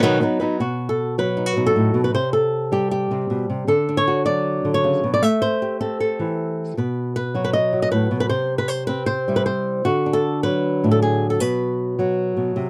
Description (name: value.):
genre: flamenco.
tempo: 156 BPM.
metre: 4/4.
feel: straight.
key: unclear.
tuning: A4 = 440 Hz.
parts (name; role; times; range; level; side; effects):
flamenco guitar; solo; 0.0-12.7 s; A2 to E5; -21 LUFS; equal; none.
room: light reverb.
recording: dark, warm production.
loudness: -21 LUFS.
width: mono.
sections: 0.6-12.7 A section.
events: none.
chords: 0.0 B; 2.1 C5; 3.7 D; 5.2 Am7; 6.8 B5; 8.3 C; 9.9 D; 11.4 B5.